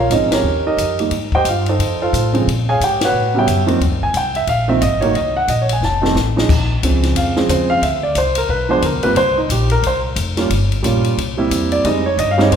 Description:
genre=jazz piano trio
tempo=179 BPM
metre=4/4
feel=swing 61% on 8ths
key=unclear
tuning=A4 = 440 Hz
part: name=warm concert grand piano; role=melody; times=0.0-12.6 s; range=Db3 to A5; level=-16 LUFS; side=right 2 dB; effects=none
part: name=upright bass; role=bass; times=0.0-12.6 s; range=F1 to Bb2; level=-19 LUFS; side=left 1 dB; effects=none
part: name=compact cocktail drum kit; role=drums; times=0.1-12.6 s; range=crash cymbal, hi-hat, kick drum, ride cymbal, snare drum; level=-23 LUFS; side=left 4 dB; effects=none
room=wet recital hall reverb, RT60 1.7 s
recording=recorded in a church or concert hall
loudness=-14 LUFS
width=side -8 dB against mid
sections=0.0-6.5 A section; 6.5-12.6 B section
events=band accent 0.3, 3.0; drum fill 5.8-6.5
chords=0.4 Eb9; 1.1 Abmaj7; 1.8 F7; 2.5 Bbm7; 3.1 A13; 3.8 Ab69; 5.1 Bbsus4; 5.8 F7; 6.5 Bbm7; 7.8 Cadd9; 8.5 G7; 9.2 C5; 10.5 Gm7b5; 11.2 C7; 11.8 Fm9

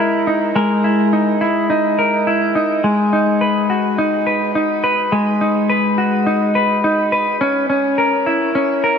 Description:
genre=dream pop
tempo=105 BPM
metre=4/4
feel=straight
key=unclear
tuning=A4 = 440 Hz
part: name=semi-hollow electric guitar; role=solo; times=0.0-9.0 s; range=G#3 to B4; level=-14 LUFS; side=equal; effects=lush chorus, digital delay
room=wet shimmer reverb, RT60 5.4 s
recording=none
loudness=-14 LUFS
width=side -7 dB against mid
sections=0.0-2.8 A section; 2.8-9.0 B section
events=none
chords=0.0 Emaj7#11/G#; 2.8 G#m7; 7.4 C#m6

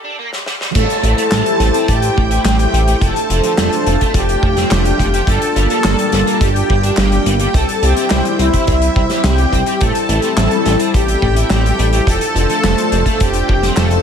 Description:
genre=synthwave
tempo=106 BPM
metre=4/4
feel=straight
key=unclear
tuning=A4 = 440 Hz
part: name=overdriven electric guitar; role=riff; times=0.0-13.9 s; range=F3 to G4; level=-25 LUFS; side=right 2 dB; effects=ensemble chorus
part: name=loose indie drum kit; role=drums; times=0.3-14.0 s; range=crash cymbal, handclaps, hi-hat, snare drum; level=-20 LUFS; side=right 1 dB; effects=gated reverb
part: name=soft supersaw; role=melody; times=0.8-14.0 s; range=E4 to A4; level=-19 LUFS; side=left 1 dB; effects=phaser, ping-pong delay
part: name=string machine, violins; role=second line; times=0.8-14.0 s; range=E5 to A5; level=-23 LUFS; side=equal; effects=ensemble chorus
part: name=warm analog pad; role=sustained chords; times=0.8-14.0 s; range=G3 to C5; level=-20 LUFS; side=left 1 dB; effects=chorus, sidechain pumping
part: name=chorused synth bass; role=bass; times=0.8-14.0 s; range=F1 to C2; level=-16 LUFS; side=equal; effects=tube saturation
part: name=kick drum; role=drums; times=0.8-13.6 s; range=none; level=-17 LUFS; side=equal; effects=none
room=small room reverb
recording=high-pass filter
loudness=-12 LUFS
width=side -7 dB against mid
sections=0.8-14.0 A section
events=break 0.0-0.8; drum fill 0.3-0.8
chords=0.0 Gm; 0.8 Am7; 3.0 F6; 5.3 Gm7; 7.5 C; 9.8 Am7; 12.1 F6

